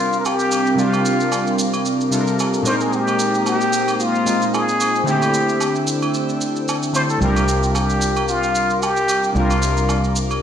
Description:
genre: amapiano.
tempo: 112 BPM.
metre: 4/4.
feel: swing 55% on 16ths.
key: C minor.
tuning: A4 = 440 Hz.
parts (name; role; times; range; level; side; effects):
trumpet with plunger mute; melody; 0.0-10.2 s; F4 to C5; -20 LUFS; left 1 dB; digital delay.
warm analog keys; accompaniment; 0.0-10.4 s; Bb2 to Bb4; -21 LUFS; left 1 dB; chorus.
airy breathy pad; sustained chords; 0.0-10.4 s; Bb3 to E6; -24 LUFS; right 1 dB; chorus.
shaker; drums; 0.1-10.4 s; none; -27 LUFS; right 3 dB; none.
agogo bells and woodblock; percussion; 0.3-10.4 s; none; -28 LUFS; right 3 dB; none.
fingered electric bass; bass; 7.2-10.4 s; C2; -21 LUFS; equal; none.
room: light reverb.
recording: played on a big sound system in a bare room, stone room reverb.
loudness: -16 LUFS.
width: side -8 dB against mid.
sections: 0.0-10.4 A section.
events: none.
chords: 0.0 C9sus4; 2.7 Bb9sus4; 5.1 D9sus4; 7.2 C9sus4.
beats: 0.25 | 0.79 1.32 1.86 2.39 | 2.93 3.46 4.00 4.54 | 5.07 5.61 6.14 6.68 | 7.21 7.75 8.29 8.82 | 9.36 9.89.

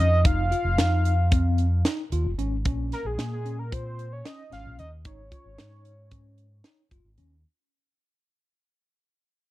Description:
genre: progressive instrumental, band music in an uneven meter.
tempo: 225 BPM (eighths).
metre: 9/8.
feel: straight.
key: unclear.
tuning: A4 = 441 Hz.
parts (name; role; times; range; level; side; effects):
fat analog lead; melody; 0.0-6.9 s; Ab4 to F5; -30 LUFS; equal; chorus.
tine electric piano; arpeggios; 0.0-7.3 s; Bb3 to F4; -33 LUFS; left 2 dB; medium stereo tremolo.
overdriven fingered electric bass; bass; 0.0-7.4 s; F1 to Bb2; -24 LUFS; equal; none.
tight funk drum kit; drums; 0.2-7.3 s; hi-hat, kick drum, snare drum; -25 LUFS; equal; none.
room: studio reverb.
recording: dry, close 1970s-style studio recording.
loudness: -22 LUFS.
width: side -16 dB against mid.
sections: 0.0-7.4 A section.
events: fade-out 0.0-7.4.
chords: 0.2 F7(no3); 2.7 Bbm; 5.0 Absus4.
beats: | 0.25 0.52 0.79 1.05 1.32 1.59 1.85 2.12 2.39 | 2.65 2.92 3.19 3.45 3.72 3.99 4.25 4.52 4.78 | 5.05 5.32 5.58 5.85 6.11 6.38 6.64 6.91 7.17.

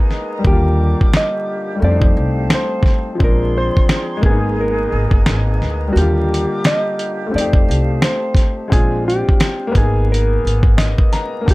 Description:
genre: lo-fi hip hop.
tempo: 87 BPM.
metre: 4/4.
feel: swing 58% on 16ths.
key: unclear.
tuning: A4 = 441 Hz.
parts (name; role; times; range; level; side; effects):
hollow-body jazz guitar; melody; 0.0-11.5 s; Gb4 to Eb5; -22 LUFS; equal; low-pass filter.
clear upright piano; accompaniment; 0.0-11.5 s; D3 to Bb5; -22 LUFS; left 2 dB; low-pass filter.
breathy flute section; sustained chords; 0.0-8.7 s; G4 to D6; -28 LUFS; right 2 dB; low-pass filter, plate reverb.
dusty soul sampler-style drum kit; drums; 0.1-11.5 s; hi-hat, kick drum, snare drum; -14 LUFS; equal; vintage 12-bit sampler grit.
upright bass; bass; 0.4-10.9 s; G1 to F2; -17 LUFS; equal; none.
room: light reverb.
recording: vinyl crackle.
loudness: -13 LUFS.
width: side -21 dB against mid.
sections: 0.0-11.5 A section.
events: break 0.0-6.0; kick muted 6.0-6.6.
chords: 0.4 Ebmaj7; 1.8 F9; 3.2 Bb9; 4.2 Abmadd9; 6.0 Ebmaj7; 7.3 F9; 8.7 Bb9; 9.7 Abmadd9.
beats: | 0.44 1.13 1.82 2.51 | 3.20 3.89 4.58 5.27 | 5.96 6.65 7.33 8.03 | 8.71 9.40 10.09 10.78 | 11.47.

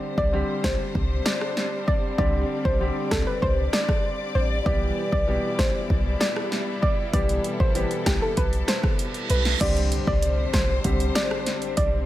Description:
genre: dancehall.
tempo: 97 BPM.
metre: 4/4.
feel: straight.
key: C major.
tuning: A4 = 443 Hz.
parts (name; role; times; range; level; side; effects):
warm baby grand piano; accompaniment; 0.0-12.1 s; B2 to G4; -31 LUFS; left 1 dB; none.
warm studio string section; sustained chords; 0.0-12.1 s; B2 to D5; -32 LUFS; left 2 dB; none.
soft round pluck; melody; 0.2-11.9 s; G4 to D5; -28 LUFS; equal; chorus.
clean 808-style bass; bass; 0.2-12.0 s; A1 to C2; -25 LUFS; equal; none.
deep house drum kit; drums; 0.2-11.9 s; crash cymbal, hi-hat, kick drum, rim click, snare drum; -25 LUFS; equal; overdrive.
reverse cymbal and impact; sound effects; 8.9-12.1 s; none; -33 LUFS; right 3 dB; none.
room: little or no reverb.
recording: none.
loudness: -21 LUFS.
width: side -14 dB against mid.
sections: 0.0-9.6 A section; 9.6-12.1 B section.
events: reverse cymbal 8.9-9.6; impact 9.6-12.1.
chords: 0.0 Csus2; 4.7 Em; 9.6 Csus2.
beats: 0.33 0.95 1.57 | 2.19 2.81 3.42 4.04 | 4.66 5.28 5.90 6.52 | 7.13 7.75 8.37 8.99 | 9.61 10.23 10.85 11.46.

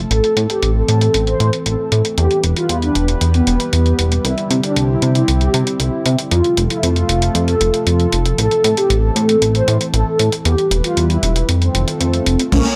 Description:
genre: italo disco.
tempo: 116 BPM.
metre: 4/4.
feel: straight.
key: A minor.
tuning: A4 = 438 Hz.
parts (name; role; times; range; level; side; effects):
warm analog pad; sustained chords; 0.0-12.8 s; C3 to Ab5; -25 LUFS; equal; chorus.
chorused synth bass; bass; 0.0-12.6 s; E1 to C3; -18 LUFS; equal; none.
mellow synth brass; melody; 0.1-12.8 s; Bb3 to C5; -21 LUFS; equal; chorus, digital delay.
clean 12-bit digital drum machine; drums; 0.1-12.8 s; crash cymbal, hi-hat; -24 LUFS; equal; low-pass filter on hats, low-pass filter on cymbals, low-pass filter on room.
warbly dusty pluck; arpeggios; 12.5-12.8 s; Ab3 to Bb3; -23 LUFS; equal; chorus.
electronic kick drum; drums; 12.5-12.6 s; none; -23 LUFS; equal; none.
room: moderate plate reverb, RT60 1.6 s, digital ambience.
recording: none.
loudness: -16 LUFS.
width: mono.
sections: 0.0-12.5 A section.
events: none.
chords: 0.1 Am; 2.2 Em; 4.2 Cadd9; 6.3 F; 8.4 Am; 10.5 Em; 11.5 F7.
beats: | 0.11 0.63 1.14 1.66 | 2.18 2.69 3.21 3.73 | 4.25 4.76 5.28 5.80 | 6.32 6.83 7.35 7.87 | 8.38 8.90 9.42 9.94 | 10.45 10.97 11.49 12.01 | 12.52.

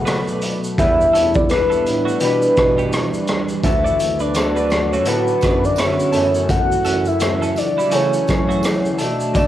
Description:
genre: indie pop, bedroom pop.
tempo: 84 BPM.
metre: 4/4.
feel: swing 60% on 16ths.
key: unclear.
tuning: A4 = 440 Hz.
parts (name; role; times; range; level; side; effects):
soft octave-layered synth lead; melody; 0.0-9.5 s; B4 to F#5; -18 LUFS; equal; phaser, wide subtle chorus, cassette tape.
electric guitar through a small old amp; accompaniment; 0.0-9.5 s; F#2 to B4; -22 LUFS; left 1 dB; lush chorus, warbly pitch drift, cassette tape.
granular cloud pad; sustained chords; 0.0-9.5 s; B2 to A4; -29 LUFS; right 2 dB; none.
mellow bass clarinet; bass; 0.0-9.5 s; D2 to F#3; -25 LUFS; equal; none.
twelve-string electric guitar; second line; 0.1-8.6 s; G3 to D5; -30 LUFS; right 4 dB; lush chorus, cassette tape, analog delay.
raw garage drum kit; drums; 0.1-9.5 s; hi-hat, kick drum, rim click, shaker; -22 LUFS; equal; none.
tambourine; percussion; 3.6-9.5 s; none; -40 LUFS; right 6 dB; none.
room: light reverb, small room ambience.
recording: home recording on cassette.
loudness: -15 LUFS.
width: side -12 dB against mid.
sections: 0.0-9.5 A section.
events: none.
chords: 0.0 Bm7; 0.8 Em7; 3.6 D6; 6.1 F#m7.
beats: 0.06 | 0.78 1.49 2.21 2.92 | 3.63 4.35 5.06 5.78 | 6.49 7.21 7.92 8.64 | 9.35.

